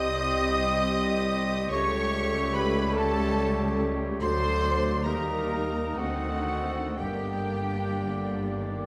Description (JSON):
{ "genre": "classical, slow romantic movement for symphony orchestra", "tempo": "57-75 BPM", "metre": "3/4", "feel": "rubato", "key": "G minor", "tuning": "A4 = 440 Hz", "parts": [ { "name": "rich studio violin section", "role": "melody", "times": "0.0-8.9 s", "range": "F#5 to Eb6", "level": "-39 LUFS", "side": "equal", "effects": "none" }, { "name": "clear clarinet", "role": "second line", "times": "0.0-8.9 s", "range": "F#4 to A4", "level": "-39 LUFS", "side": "equal", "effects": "none" }, { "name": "hollow concert flute", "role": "second line", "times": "0.0-8.9 s", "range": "F#5 to Eb6", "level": "-38 LUFS", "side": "equal", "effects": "none" }, { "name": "mellow oboe", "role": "second line", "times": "0.0-8.9 s", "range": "C5 to Eb5", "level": "-41 LUFS", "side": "equal", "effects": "none" }, { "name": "rich studio violin section", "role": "second line", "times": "0.0-8.9 s", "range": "F#4 to Eb5", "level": "-38 LUFS", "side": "equal", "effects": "none" }, { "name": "mellow bassoon", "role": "accompaniment", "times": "0.0-8.9 s", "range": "G3 to C4", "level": "-40 LUFS", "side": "equal", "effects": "none" }, { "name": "rich studio viola section", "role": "accompaniment", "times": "0.0-8.9 s", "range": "F#3 to Eb4", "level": "-40 LUFS", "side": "equal", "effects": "none" }, { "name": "warm French horn section", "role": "sustained chords", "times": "0.0-8.9 s", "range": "D3 to C5", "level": "-37 LUFS", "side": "equal", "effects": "none" }, { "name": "mellow trumpet section", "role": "stabs", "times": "0.0-8.9 s", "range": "F#4 to Eb5", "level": "-36 LUFS", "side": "equal", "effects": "none" }, { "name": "mellow tuba", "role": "bass", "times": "0.0-8.9 s", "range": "G1 to Eb2", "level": "-38 LUFS", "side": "equal", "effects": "none" }, { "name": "rich studio cello section", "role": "bass", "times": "0.0-8.9 s", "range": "C2 to G2", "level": "-37 LUFS", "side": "equal", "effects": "none" }, { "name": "rich studio double bass section", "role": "bass", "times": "0.0-8.9 s", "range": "G1 to Eb2", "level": "-36 LUFS", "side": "equal", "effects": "none" } ], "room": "wet scoring stage reverb, RT60 1.7 s", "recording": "none", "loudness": "-27 LUFS", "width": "mono", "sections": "0.0-8.9 A section", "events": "none", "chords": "0.0 Cm; 1.7 A7/C#; 4.2 D; 5.1 Eb; 6.0 D7b9; 7.0 Gm" }